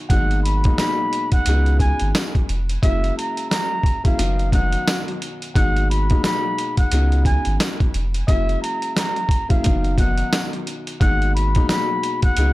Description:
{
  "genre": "hip hop, boom-bap hip-hop",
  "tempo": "88 BPM",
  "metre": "4/4",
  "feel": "swing 60% on 16ths",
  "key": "G# minor",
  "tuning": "A4 = 435 Hz",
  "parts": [
    { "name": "dark baby grand piano", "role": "accompaniment", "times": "0.0-12.5 s", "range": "F#2 to E4", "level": "-26 LUFS", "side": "left 2 dB", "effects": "cassette tape, high-pass filter, low-pass filter" },
    { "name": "trumpet with bucket mute", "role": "melody", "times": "0.1-12.5 s", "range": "E5 to B5", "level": "-25 LUFS", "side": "equal", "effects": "high-pass filter, low-pass filter, tape echo" },
    { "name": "saturated sub bass", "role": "bass", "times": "0.1-12.5 s", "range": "E#1 to C#2", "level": "-19 LUFS", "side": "equal", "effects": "transformer saturation" },
    { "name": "boom bap sampler-style drum kit", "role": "drums", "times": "0.1-12.5 s", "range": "hi-hat, kick drum, snare drum", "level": "-20 LUFS", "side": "equal", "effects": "none" },
    { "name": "tambourine", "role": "percussion", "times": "0.8-11.9 s", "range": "none", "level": "-35 LUFS", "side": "right 4 dB", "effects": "none" }
  ],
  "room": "little or no reverb",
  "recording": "dry, gritty hardware recording, transformer saturation",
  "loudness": "-17 LUFS",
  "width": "side -18 dB against mid",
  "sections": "0.1-12.5 A section",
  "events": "none",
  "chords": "0.1 G#m7; 1.5 C#7sus4; 2.8 F#7; 4.2 B/F#; 5.6 G#m7; 6.9 C#7sus4; 8.3 F#7; 9.6 B/F#; 11.0 G#m7",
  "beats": "| 0.10 0.78 1.46 2.15 | 2.83 3.51 4.19 4.87 | 5.55 6.24 6.92 7.60 | 8.28 8.96 9.65 10.33 | 11.01 11.69 12.37"
}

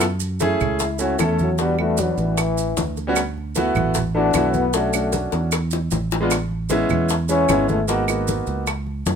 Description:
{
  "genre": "Afro-Cuban jazz",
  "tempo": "152 BPM",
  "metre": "4/4",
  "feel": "straight",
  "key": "F# minor",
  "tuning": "A4 = 442 Hz",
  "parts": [
    { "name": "clear grand piano", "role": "accompaniment", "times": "0.0-8.6 s", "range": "G3 to A4", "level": "-22 LUFS", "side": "right 1 dB", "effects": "none" },
    { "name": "fingered electric bass", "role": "bass", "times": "0.0-9.2 s", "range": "G#1 to Gb2", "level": "-24 LUFS", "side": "right 2 dB", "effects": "none" },
    { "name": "bongos", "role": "percussion", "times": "0.0-9.2 s", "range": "none", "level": "-28 LUFS", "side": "left 6 dB", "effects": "none" },
    { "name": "claves", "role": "percussion", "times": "0.0-8.9 s", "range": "none", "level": "-29 LUFS", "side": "right 10 dB", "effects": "none" },
    { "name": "congas", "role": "percussion", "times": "0.0-9.2 s", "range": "none", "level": "-29 LUFS", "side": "equal", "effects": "none" },
    { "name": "maracas", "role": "percussion", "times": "0.0-9.2 s", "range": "none", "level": "-31 LUFS", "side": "right 8 dB", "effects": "none" },
    { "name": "breathy trombone", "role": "second line", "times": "0.8-8.3 s", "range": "E3 to E4", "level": "-22 LUFS", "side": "left 4 dB", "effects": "none" }
  ],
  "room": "light reverb",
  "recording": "minimal, uncompressed stereo recording",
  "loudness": "-18 LUFS",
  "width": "side -7 dB against mid",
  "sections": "0.0-9.2 A section",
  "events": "trombone solo 0.0-9.2; drum fill 5.3-6.3",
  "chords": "0.0 F#m9; 1.6 Em7; 2.4 A5; 3.2 D69; 4.7 Bm9; 5.5 E; 6.3 Amaj9; 7.9 G#m9",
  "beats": "| 0.02 0.41 0.81 1.20 | 1.59 1.99 2.38 2.77 | 3.17 3.56 3.95 4.35 | 4.74 5.13 5.53 5.92 | 6.31 6.71 7.10 7.49 | 7.89 8.28 8.67 9.06"
}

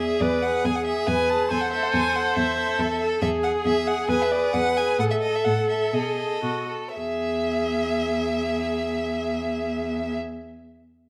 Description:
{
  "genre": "quick classical-period movement for string quartet",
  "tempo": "114-142 BPM",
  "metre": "4/4",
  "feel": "straight",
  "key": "E major",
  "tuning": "A4 = 440 Hz",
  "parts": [
    { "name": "rich violin", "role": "melody", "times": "0.0-10.2 s", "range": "D5 to A5", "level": "-32 LUFS", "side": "equal", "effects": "none" },
    { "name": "clear violin", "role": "second line", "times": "0.0-10.2 s", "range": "G#4 to E5", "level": "-31 LUFS", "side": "equal", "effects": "none" },
    { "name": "clear viola", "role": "accompaniment", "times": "0.0-10.2 s", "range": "F#4 to C5", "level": "-28 LUFS", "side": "equal", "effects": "none" },
    { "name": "clear cello", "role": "bass", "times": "0.0-10.2 s", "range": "E2 to B2", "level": "-31 LUFS", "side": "equal", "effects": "none" }
  ],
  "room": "moderate recital hall reverb, RT60 1.3 s",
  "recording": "close, detailed microphones",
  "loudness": "-24 LUFS",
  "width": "mono",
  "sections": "0.0-6.9 A section; 6.9-11.0 B section",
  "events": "slowing down 2.4-6.9",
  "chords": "0.0 E; 1.5 Am/E; 3.2 E; 5.0 F#m7/A; 5.9 B7; 6.9 E",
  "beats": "0.21 0.65 1.08 | 1.51 1.94 2.36 2.79 | 3.22 3.65 4.09 4.54 | 4.99 5.46 5.93 6.42 | 6.94 7.46 7.98 8.49 | 9.00 9.51 10.02"
}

